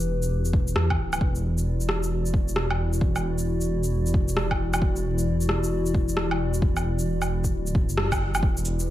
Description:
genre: future garage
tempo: 133 BPM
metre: 4/4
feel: swing 64% on 16ths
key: unclear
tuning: A4 = 443 Hz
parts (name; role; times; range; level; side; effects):
- warbly tape-like pad; sustained chords; 0.0-8.9 s; E3 to D5; -29 LUFS; equal; chorus, built-in reverb, sidechain pumping
- dark detuned saw bass; bass; 0.0-8.9 s; D1 to E2; -26 LUFS; equal; sidechain pumping
- electronic shaker, rim click, woodblock and cabasa; drums; 0.0-8.9 s; none; -29 LUFS; equal; overdrive
- electronic kick drum; drums; 0.5-8.5 s; none; -24 LUFS; equal; overdrive
room: light reverb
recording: vinyl crackle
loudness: -22 LUFS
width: side -14 dB against mid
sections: 0.0-8.4 A section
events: band accent 8.0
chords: 0.0 Em; 1.2 Dadd9/E

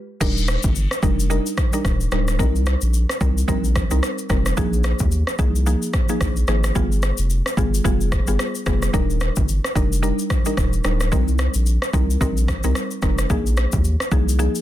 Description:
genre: afrobeats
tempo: 110 BPM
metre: 4/4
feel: swing 58% on 16ths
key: C minor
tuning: A4 = 440 Hz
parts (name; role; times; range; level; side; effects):
- mallet-like synth pluck; accompaniment; 0.2-14.6 s; F3 to Bb4; -25 LUFS; equal; chorus
- saturated sub bass; bass; 0.2-14.5 s; D1 to Eb2; -20 LUFS; equal; none
- deep house drum kit; drums; 0.2-14.6 s; crash cymbal, kick drum, rim click, shaker; -22 LUFS; equal; soft clipping on snare
room: little or no reverb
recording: dense, heavily limited modern master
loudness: -18 LUFS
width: side -13 dB against mid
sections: 0.2-14.6 A section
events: break 0.0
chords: 0.2 Ebmaj7; 2.4 Cm7; 4.6 Bb7sus4; 6.8 G7b9; 8.9 Ebmaj7; 11.1 Cm7; 13.3 Bb7sus4

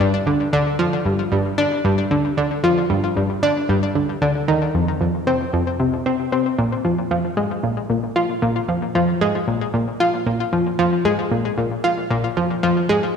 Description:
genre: ambient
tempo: 114 BPM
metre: 4/4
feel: straight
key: unclear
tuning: A4 = 440 Hz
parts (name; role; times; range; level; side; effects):
- analog pluck; solo; 0.0-13.1 s; F2 to F4; -17 LUFS; equal; chorus, ping-pong delay
room: wet echo chamber reverb, RT60 2.1 s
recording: echo-heavy mix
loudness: -18 LUFS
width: side -6 dB against mid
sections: 0.0-6.6 A section; 6.6-13.2 B section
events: none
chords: none

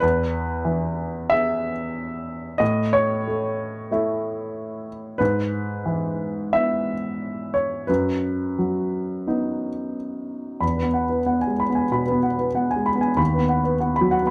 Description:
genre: neoclassical minimalist piano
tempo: 86-96 BPM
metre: 4/4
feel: rubato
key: E major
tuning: A4 = 440 Hz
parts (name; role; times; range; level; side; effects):
- dark baby grand piano; solo; 0.0-14.3 s; D#2 to B5; -23 LUFS; equal; none
room: light reverb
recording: close, detailed microphones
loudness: -24 LUFS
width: mono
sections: 0.0-10.6 A section; 10.6-14.3 B section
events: none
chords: 0.0 E; 2.6 A; 5.2 E/G#; 7.9 B/F#; 10.6 Eadd9; 13.2 B/D#

